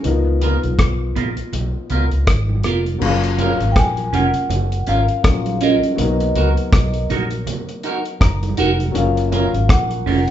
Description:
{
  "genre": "lovers rock reggae",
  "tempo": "81 BPM",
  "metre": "4/4",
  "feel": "swing 59% on 16ths",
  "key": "F# major",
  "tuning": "A4 = 440 Hz",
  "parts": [
    { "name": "dark concert grand piano", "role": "accompaniment", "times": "0.0-10.3 s", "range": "E3 to A#5", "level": "-25 LUFS", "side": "left 4 dB", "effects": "none" },
    { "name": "damped 70s drum kit", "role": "drums", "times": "0.0-10.3 s", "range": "crash cymbal, hi-hat, kick drum, rim click", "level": "-18 LUFS", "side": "equal", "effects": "none" },
    { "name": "congas", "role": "percussion", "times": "0.0-10.3 s", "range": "none", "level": "-28 LUFS", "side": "right 5 dB", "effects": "none" },
    { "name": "vintage muted fingered electric bass", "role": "bass", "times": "0.1-10.3 s", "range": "E#1 to C#2", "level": "-20 LUFS", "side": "equal", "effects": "none" },
    { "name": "clean electric guitar", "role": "stabs", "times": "0.4-10.2 s", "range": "B3 to A#4", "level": "-20 LUFS", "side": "right 3 dB", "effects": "phaser" },
    { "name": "vibraphone with medium mallets", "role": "melody", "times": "3.0-10.3 s", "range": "D#5 to G#5", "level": "-22 LUFS", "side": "left 1 dB", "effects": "none" }
  ],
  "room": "moderate large studio reverb, RT60 0.8 s",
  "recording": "band playing live in one room, nothing above 7.8 kHz",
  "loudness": "-15 LUFS",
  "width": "side -11 dB against mid",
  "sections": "0.0-3.0 A section; 3.0-10.3 B section",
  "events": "grand piano fill 7.8-8.9",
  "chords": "0.0 C#13; 3.0 F#maj7; 6.0 Bmaj7; 8.9 F#maj7",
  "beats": "| 0.04 0.79 1.53 2.27 | 3.02 3.76 4.50 5.24 | 5.98 6.72 7.47 8.21 | 8.95 9.69"
}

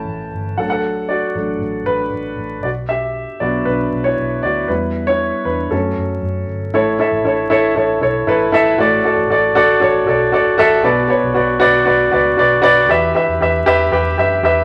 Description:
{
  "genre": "piano-driven pop",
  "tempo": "117 BPM",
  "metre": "4/4",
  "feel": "straight",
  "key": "B minor",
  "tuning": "A4 = 440 Hz",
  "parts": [
    { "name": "warm grand piano", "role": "accompaniment", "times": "0.0-14.6 s", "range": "A2 to A5", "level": "-16 LUFS", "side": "equal", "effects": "none" },
    { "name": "vintage muted fingered electric bass", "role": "bass", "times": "0.0-14.6 s", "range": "G1 to F#2", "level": "-28 LUFS", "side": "equal", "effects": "none" }
  ],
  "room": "wet large studio reverb, RT60 0.9 s",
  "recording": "vinyl crackle",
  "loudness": "-16 LUFS",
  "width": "mono",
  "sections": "0.0-6.7 A section; 6.7-14.6 B section",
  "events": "grand piano solo 0.0-6.7",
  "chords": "0.0 A; 0.6 D/A; 2.6 Bm; 4.7 Em; 5.7 F#m; 6.7 A; 8.8 D/A; 10.8 Bm; 12.9 Em",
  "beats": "0.07 | 0.58 1.10 1.61 2.12 | 2.64 3.15 3.67 4.18 | 4.69 5.21 5.72 6.23 | 6.74 7.26 7.77 8.28 | 8.80 9.31 9.82 10.34 | 10.85 11.36 11.87 12.39 | 12.90 13.41 13.93 14.44"
}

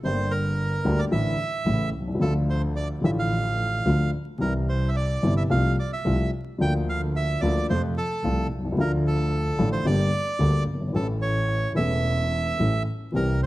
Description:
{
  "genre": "tango",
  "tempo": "110 BPM",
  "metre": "4/4",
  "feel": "rubato",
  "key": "unclear",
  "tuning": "A4 = 440 Hz",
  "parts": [
    { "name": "bandoneon", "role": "melody", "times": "0.0-13.5 s", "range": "A4 to G5", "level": "-29 LUFS", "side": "right 3 dB", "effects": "none" },
    { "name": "dark upright piano", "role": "accompaniment", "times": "0.0-13.5 s", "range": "E1 to A4", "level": "-25 LUFS", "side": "left 1 dB", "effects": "none" },
    { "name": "clear double bass", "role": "bass", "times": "0.0-13.5 s", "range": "E1 to F2", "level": "-26 LUFS", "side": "right 1 dB", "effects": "none" }
  ],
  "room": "light reverb",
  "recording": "close, detailed microphones, vinyl crackle",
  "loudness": "-22 LUFS",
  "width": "side -17 dB against mid",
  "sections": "0.0-13.5 A section",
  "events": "none",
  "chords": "0.0 Gm; 1.1 Asus4; 1.7 A; 2.2 Dm; 4.4 C; 5.5 F/C; 6.6 Bb/D; 7.7 F; 8.8 Dm; 9.9 Gm; 10.9 A",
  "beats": "| 0.04 0.58 1.12 1.66 | 2.21 2.76 3.31 3.86 | 4.41 4.96 5.51 6.05 | 6.60 7.15 7.69 8.23 | 8.77 9.31 9.86 10.40 | 10.94 11.48 12.03 12.59 | 13.14"
}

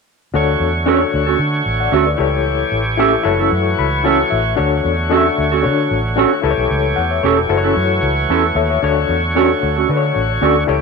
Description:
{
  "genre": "soul",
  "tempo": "113 BPM",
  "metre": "4/4",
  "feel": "straight",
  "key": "D major",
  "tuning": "A4 = 440 Hz",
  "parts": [
    { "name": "overdriven reed electric piano", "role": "accompaniment", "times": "0.3-10.8 s", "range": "D4 to B5", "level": "-18 LUFS", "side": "left 14 dB", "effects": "fast tremolo" },
    { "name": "vintage muted fingered electric bass", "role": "bass", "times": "0.3-10.8 s", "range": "E1 to D3", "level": "-20 LUFS", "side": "right 1 dB", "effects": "none" },
    { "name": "overdriven tonewheel organ", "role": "sustained chords", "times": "0.4-10.8 s", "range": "D3 to C#5", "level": "-20 LUFS", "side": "right 1 dB", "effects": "slow rotary speaker" },
    { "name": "mellow electric guitar", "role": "stabs", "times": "0.9-10.5 s", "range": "C#4 to A4", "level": "-17 LUFS", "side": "right 15 dB", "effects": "wide subtle chorus" }
  ],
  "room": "light reverb",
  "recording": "1960s-style stereo with parts hard left and right",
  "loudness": "-13 LUFS",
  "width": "side -4 dB against mid",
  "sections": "0.3-10.8 A section",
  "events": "reed electric piano fill 3.5-4.6, 8.0-8.8",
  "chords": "0.3 Dmaj7; 2.2 A7/C#; 3.3 F#m7; 4.6 Dmaj7; 6.4 A7; 7.5 F#m7; 8.8 Dmaj7",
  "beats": "| 0.33 0.87 1.40 1.93 | 2.46 2.99 3.52 4.05 | 4.59 5.12 5.65 6.18 | 6.71 7.24 7.77 8.30 | 8.83 9.36 9.89 10.43"
}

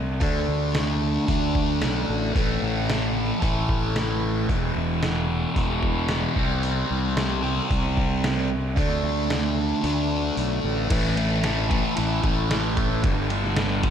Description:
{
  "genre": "psychedelic rock",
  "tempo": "112 BPM",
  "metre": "4/4",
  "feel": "straight",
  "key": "A minor",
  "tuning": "A4 = 439 Hz",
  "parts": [
    { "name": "fuzz fingered electric bass", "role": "bass", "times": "0.0-13.9 s", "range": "E1 to D2", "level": "-27 LUFS", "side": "equal", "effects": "overdrive" },
    { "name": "fuzz guitar", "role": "riff", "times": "0.2-13.9 s", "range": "E2 to D4", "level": "-24 LUFS", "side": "equal", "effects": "distortion, phaser" },
    { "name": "lo-fi sampler-style drum kit", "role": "drums", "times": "0.2-13.9 s", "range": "crash cymbal, hi-hat, kick drum, ride cymbal, snare drum", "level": "-28 LUFS", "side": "equal", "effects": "none" }
  ],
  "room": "moderate huge ambient reverb, RT60 7.3 s",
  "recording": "dreamy mix soaked in reverb",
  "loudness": "-21 LUFS",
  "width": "side -8 dB against mid",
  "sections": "0.0-10.9 A section; 10.9-13.9 B section",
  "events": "kick and snare drop out 2.1, 9.8-10.9",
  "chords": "0.2 D5; 2.4 A5; 4.5 E5; 6.4 C5; 8.8 D5; 10.9 A5; 13.0 G5",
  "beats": "| 0.22 0.76 1.29 1.82 | 2.36 2.89 3.42 3.96 | 4.49 5.03 5.56 6.10 | 6.63 7.17 7.70 8.23 | 8.77 9.30 9.84 10.37 | 10.90 11.44 11.97 12.50 | 13.04 13.57"
}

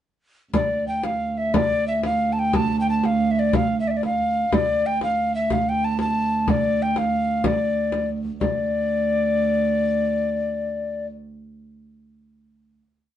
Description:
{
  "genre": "medieval dance",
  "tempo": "122 BPM (dotted quarters)",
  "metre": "6/8",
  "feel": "straight",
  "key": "D minor",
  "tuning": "A4 = 441 Hz",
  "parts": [
    { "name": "mellow hollow soprano recorder", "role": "melody", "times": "0.5-11.1 s", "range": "D5 to A5", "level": "-22 LUFS", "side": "left 2 dB", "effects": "none" },
    { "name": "warm viola da gamba", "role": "drone", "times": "0.5-11.1 s", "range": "D2", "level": "-25 LUFS", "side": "right 4 dB", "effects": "none" },
    { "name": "frame drum", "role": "percussion", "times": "0.5-8.6 s", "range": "none", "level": "-24 LUFS", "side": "left 1 dB", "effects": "none" }
  ],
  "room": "wet studio reverb, RT60 0.5 s",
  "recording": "band playing live in one room, nothing above 10.5 kHz",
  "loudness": "-20 LUFS",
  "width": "side -11 dB against mid",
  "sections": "0.5-8.4 A section; 8.4-10.3 final note",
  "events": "speeding up 0.5-10.3",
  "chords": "none",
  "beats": "| 0.54 1.04 | 1.54 2.04 | 2.54 3.03 | 3.53 4.02 | 4.52 5.01 | 5.50 5.99 | 6.48 6.96 | 7.45 7.93 | 8.41 8.88 | 9.36 9.84"
}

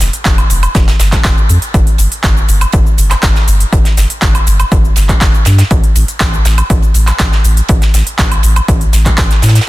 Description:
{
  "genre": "progressive house",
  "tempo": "121 BPM",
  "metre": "4/4",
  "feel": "straight",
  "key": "unclear",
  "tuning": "A4 = 440 Hz",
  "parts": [
    { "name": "round analog bass", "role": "bass", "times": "0.0-9.6 s", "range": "F1 to A2", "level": "-11 LUFS", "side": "equal", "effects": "sidechain pumping" },
    { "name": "big-room dance drum kit", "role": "drums", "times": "0.0-9.7 s", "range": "handclaps, hi-hat, shaker, woodblock", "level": "-16 LUFS", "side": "equal", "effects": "overdrive, sidechain pumping on hats, sidechain pumping on perc" },
    { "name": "tight metal drum kit", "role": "drums", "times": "0.0-9.7 s", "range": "hi-hat, snare drum", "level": "-22 LUFS", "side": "right 3 dB", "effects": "sidechain pumping on hats, high-pass filter on hats, high-pass filter on snare, high-pass filter on room" },
    { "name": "electronic kick drum", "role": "drums", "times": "0.3-9.3 s", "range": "none", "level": "-11 LUFS", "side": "equal", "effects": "overdrive" }
  ],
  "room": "little or no reverb",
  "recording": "dense, heavily limited modern master",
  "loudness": "-8 LUFS",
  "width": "side -18 dB against mid",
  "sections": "0.0-9.7 A section",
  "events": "none",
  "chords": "none",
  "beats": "0.26 0.75 1.25 | 1.74 2.24 2.73 3.23 | 3.73 4.22 4.72 5.21 | 5.71 6.21 6.70 7.20 | 7.69 8.19 8.68 9.18"
}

